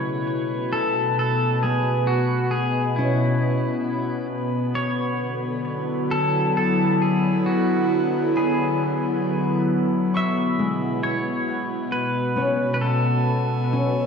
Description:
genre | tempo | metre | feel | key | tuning
ambient | 67 BPM | 3/4 | straight | A major | A4 = 441 Hz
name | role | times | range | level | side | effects
pedal steel guitar | melody | 0.0-14.1 s | E4 to E5 | -26 LUFS | left 1 dB | tape echo
evolving wavetable pad | sustained chords | 0.0-14.1 s | B2 to G#5 | -22 LUFS | equal | phaser, built-in reverb
concert harp | arpeggios | 0.0-14.1 s | G#3 to C#6 | -29 LUFS | left 3 dB | tape echo
glass harmonica | texture | 0.0-14.1 s | B5 | -36 LUFS | equal | none
room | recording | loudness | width
wet concert hall reverb, RT60 2.0 s | dark, warm production, nothing above 10.7 kHz | -20 LUFS | side -6 dB against mid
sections
0.0-14.1 A section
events
none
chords
0.0 Aadd9; 4.8 Dmaj9#11; 10.1 Amaj9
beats
0.27 1.17 | 2.06 2.96 3.85 | 4.75 5.65 6.54 | 7.44 8.33 9.23 | 10.12 11.02 11.91 | 12.81 13.71

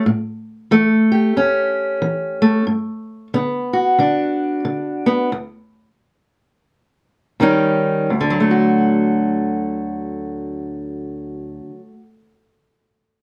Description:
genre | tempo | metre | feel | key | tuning
blues | 82-92 BPM | 4/4 | swing 60% on 8ths | D major | A4 = 440 Hz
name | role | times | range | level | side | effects
fingerpicked steel-string acoustic guitar | solo | 0.0-12.0 s | D2 to G4 | -18 LUFS | equal | none
room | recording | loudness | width
moderate studio ambience, RT60 0.5 s | none | -18 LUFS | mono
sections
0.0-8.1 A section; 8.1-11.0 B section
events
slowing down 2.7-8.1; stop 5.3-7.4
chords
0.0 A; 2.7 G; 5.3 N.C.; 7.4 Eb7; 8.1 D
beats
| 0.05 0.71 1.36 2.02 | 2.67 3.32 3.98 4.64 | 5.31 6.00 6.69 7.39 | 8.11 8.84 9.57 10.29

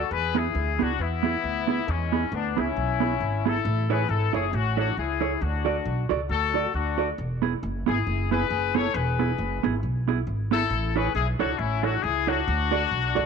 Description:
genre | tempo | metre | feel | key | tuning
ska | 136 BPM | 4/4 | swing 58% on 8ths | E mixolydian | A4 = 440 Hz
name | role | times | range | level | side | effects
clear horn section | melody | 0.0-13.3 s | G#3 to C#5 | -27 LUFS | left 11 dB | none
upright bass | bass | 0.0-13.3 s | E1 to E2 | -28 LUFS | equal | none
mellow electric guitar | accompaniment | 0.3-13.3 s | B3 to D5 | -28 LUFS | right 10 dB | none
room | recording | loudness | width
light reverb, small room ambience | 1960s-style stereo with parts hard left and right | -23 LUFS | side -6 dB against mid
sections
0.1-13.3 A section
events
none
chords
0.1 E; 3.6 A; 5.4 D; 7.2 E; 10.7 A; 12.5 D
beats
| 0.10 0.54 0.98 1.43 | 1.87 2.31 2.75 3.20 | 3.64 4.08 4.52 4.96 | 5.41 5.85 6.29 6.73 | 7.17 7.62 8.06 8.50 | 8.94 9.38 9.82 10.26 | 10.70 11.14 11.59 12.03 | 12.47 12.91

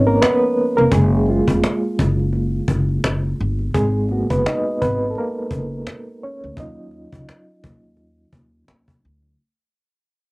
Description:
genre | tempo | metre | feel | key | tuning
lo-fi hip hop | 85 BPM | 4/4 | swing 58% on 16ths | Eb minor | A4 = 440 Hz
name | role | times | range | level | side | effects
barky reed electric piano | accompaniment | 0.0-9.4 s | F3 to Eb5 | -20 LUFS | right 1 dB | overdrive, fast tremolo, low-pass filter, cassette tape
upright bass | bass | 0.0-9.3 s | F1 to Eb2 | -19 LUFS | equal | transformer saturation
cajon | drums | 0.1-9.3 s | none | -22 LUFS | equal | cassette tape
room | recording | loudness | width
moderate booth ambience, RT60 0.2 s | home recording on cassette | -16 LUFS | side -26 dB against mid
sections
0.0-9.4 A section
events
fade-out 0.0-9.4; reed electric piano solo 0.0-9.4; filter sweep on reed electric piano 0.0-9.4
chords
0.0 Db9; 0.9 Gbmaj9; 3.7 Abm9; 6.6 Ebm9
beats
0.21 | 0.92 1.62 2.33 3.03 | 3.74 4.45 5.15 5.86 | 6.56 7.27 7.97 8.68

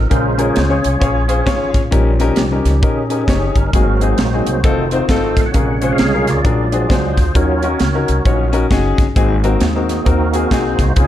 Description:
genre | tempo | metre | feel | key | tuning
uptempo gospel | 133 BPM | 4/4 | swing 61% on 8ths | unclear | A4 = 440 Hz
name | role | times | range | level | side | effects
tonewheel organ | sustained chords | 0.0-11.1 s | C3 to Gb5 | -20 LUFS | right 3 dB | fast rotary speaker, overdrive, chorus vibrato
upright bass | bass | 0.0-11.1 s | F1 to Bb2 | -18 LUFS | equal | none
clear grand piano | accompaniment | 0.1-11.1 s | Ab2 to Db5 | -18 LUFS | left 4 dB | none
crisp fusion drum kit | drums | 0.1-11.1 s | hi-hat, kick drum, snare drum | -17 LUFS | equal | none
room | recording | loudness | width
light reverb | dark, warm production | -12 LUFS | side -12 dB against mid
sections
0.0-11.1 A section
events
tonewheel organ solo 0.0-11.1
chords
0.1 Bbm7; 1.9 Eb7/Bb; 3.7 Ab7; 4.6 F7; 5.5 Bbm7; 7.4 Ebm7; 9.2 Ab7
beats
| 0.11 0.56 1.02 1.47 | 1.92 2.38 2.83 3.28 | 3.73 4.19 4.64 5.09 | 5.54 6.00 6.45 6.90 | 7.35 7.80 8.26 8.71 | 9.16 9.61 10.06 10.51 | 10.97

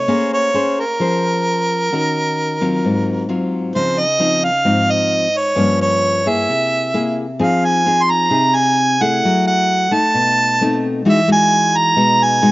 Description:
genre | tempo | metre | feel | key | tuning
bossa nova | 131 BPM | 4/4 | straight | Bb minor | A4 = 440 Hz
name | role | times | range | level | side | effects
warm harmonica | melody | 0.0-12.5 s | Bb4 to C6 | -15 LUFS | right 1 dB | slapback echo
nylon-string guitar | accompaniment | 0.0-12.5 s | G2 to C5 | -18 LUFS | left 2 dB | none
room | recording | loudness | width
little or no reverb | recorded outdoors, with no room sound, nothing above 7.5 kHz | -13 LUFS | side -19 dB against mid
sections
0.0-3.7 A section; 3.7-12.5 B section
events
none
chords
0.1 Bbm9; 1.9 Ebm7; 2.8 Ab13; 3.7 Dbmaj9; 5.6 Gm7b5; 6.5 Caug7; 7.4 Fm7; 9.2 Gbm9; 10.1 Cb7b9; 11.1 Emaj9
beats
| 0.07 0.53 0.99 1.45 | 1.91 2.37 2.82 3.28 | 3.74 4.20 4.66 5.11 | 5.57 6.03 6.49 6.94 | 7.40 7.86 8.32 8.77 | 9.23 9.69 10.15 10.61 | 11.06 11.52 11.98 12.44

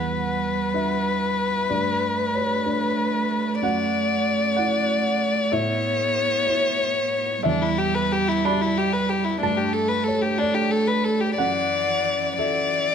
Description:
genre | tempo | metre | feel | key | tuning
neoclassical piano and strings | 62 BPM (dotted quarters) | 6/8 | rubato | D major | A4 = 436 Hz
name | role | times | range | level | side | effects
warm violin | melody | 0.0-12.9 s | D4 to D5 | -22 LUFS | left 4 dB | none
dark cello | second line | 0.0-12.9 s | E3 to B3 | -27 LUFS | right 6 dB | none
felt-muted upright piano | accompaniment | 0.0-12.9 s | E2 to B5 | -27 LUFS | right 1 dB | none
room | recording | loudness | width
wet recital hall reverb, RT60 1.6 s | none | -20 LUFS | side -7 dB against mid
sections
0.0-12.9 A section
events
none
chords
0.0 Em7; 1.7 Gadd9; 3.6 Dadd9/F#; 5.5 Aadd9; 7.4 Em7; 9.4 Gsus2; 11.4 Dadd9/F#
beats
0.74 | 1.70 2.67 | 3.63 4.58 | 5.53 6.49 | 7.45 8.46 | 9.43 10.40 | 11.39 12.39

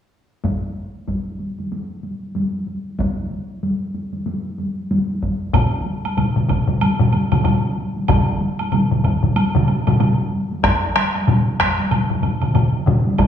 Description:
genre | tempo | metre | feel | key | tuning
japanese traditional, taiko drum ensemble | 94 BPM | 4/4 | swing 60% on 16ths | none | none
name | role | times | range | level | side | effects
taiko ensemble | percussion | 0.4-13.3 s | none | -22 LUFS | equal | none
taiko ensemble | percussion | 0.4-13.3 s | none | -24 LUFS | equal | none
solo taiko drums | percussion | 5.5-13.3 s | none | -20 LUFS | left 4 dB | none
taiko ensemble | percussion | 5.5-13.3 s | none | -21 LUFS | right 3 dB | none
woodblock | percussion | 5.5-13.3 s | none | -27 LUFS | right 2 dB | none
room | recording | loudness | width
wet recital hall reverb, RT60 1.4 s | recorded in a church or concert hall, small room ambience | -17 LUFS | side -9 dB against mid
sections
0.4-5.5 A section; 5.5-13.3 B section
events
none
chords
none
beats
| 0.43 1.07 1.71 2.35 | 2.99 3.63 4.26 4.90 | 5.54 6.18 6.82 7.45 | 8.09 8.73 9.37 10.00 | 10.64 11.28 11.91 12.55 | 13.19

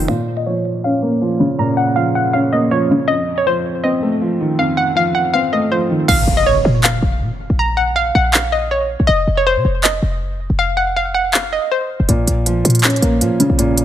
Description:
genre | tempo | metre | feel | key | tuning
hip hop, trap | 160 BPM | 4/4 | half-time | Bb harmonic minor | A4 = 439 Hz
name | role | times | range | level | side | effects
felt-muted upright piano | accompaniment | 0.0-6.1, 12.1-13.8 s | F2 to Db4 | -16 LUFS | equal | low-pass filter
short 808-style bass | bass | 0.0-0.1, 6.1-13.8 s | F1 to C3 | -18 LUFS | equal | none
hollow square pluck | melody | 0.1-11.9 s | C5 to Bb5 | -17 LUFS | equal | chorus, low-pass filter, tape echo
trap drum kit | drums | 6.1-13.8 s | crash cymbal, handclaps, hi-hat | -18 LUFS | equal | none
impact | sound effects | 6.1-7.6 s | none | -23 LUFS | equal | none
room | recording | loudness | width
light reverb | none | -14 LUFS | side -11 dB against mid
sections
0.1-6.1 A section; 6.1-13.8 B section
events
filter sweep 0.1-6.1; hi-hats muted 6.1-12.1; impact 6.1-7.6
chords
0.1 Bbm; 3.1 F7; 6.1 Bbm; 9.1 F5; 12.1 Bbm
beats
| 0.09 0.46 0.84 1.21 | 1.59 1.96 2.34 2.71 | 3.09 3.46 3.84 4.21 | 4.59 4.96 5.34 5.71 | 6.09 6.46 6.84 7.21 | 7.59 7.96 8.34 8.71 | 9.09 9.46 9.84 10.21 | 10.59 10.96 11.34 11.71 | 12.09 12.46 12.84 13.21 | 13.59

